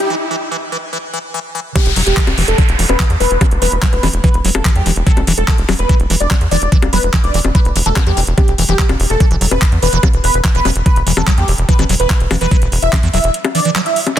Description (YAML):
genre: psychedelic trance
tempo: 145 BPM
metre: 4/4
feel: straight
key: E minor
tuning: A4 = 440 Hz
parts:
  - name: wide unison lead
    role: melody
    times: 0.0-14.2 s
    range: G4 to E5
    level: -19 LUFS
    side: equal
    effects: phaser, sidechain pumping, ping-pong delay
  - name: tight sequencer bass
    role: bass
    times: 0.0-13.3 s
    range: E1 to E2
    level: -16 LUFS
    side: equal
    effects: none
  - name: garage drum kit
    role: drums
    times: 0.0-14.2 s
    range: bongos, handclaps, hi-hat, snare drum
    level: -19 LUFS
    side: left 2 dB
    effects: none
  - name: riser, downlifter and swell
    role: sound effects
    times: 0.0-5.1, 14.2 s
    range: none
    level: -23 LUFS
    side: equal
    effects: none
  - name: liquid acid bass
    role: riff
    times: 0.1-14.2 s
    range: E3 to G3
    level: -21 LUFS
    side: moving between left 6 dB and right 5 dB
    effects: phaser, auto-pan, sidechain pumping, ping-pong delay
  - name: electronic kick drum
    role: drums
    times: 1.8-13.0 s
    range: none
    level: -13 LUFS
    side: equal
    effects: high-pass filter on kick
room: digital ambience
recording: dense, heavily limited modern master, high-pass filter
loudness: -11 LUFS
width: side -11 dB against mid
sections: 0.0-1.8 A section; 1.8-14.2 B section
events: build-up 0.0-1.8; filter sweep 0.0-1.8; break 0.1-1.8; drop 1.8-14.2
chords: 0.0 E5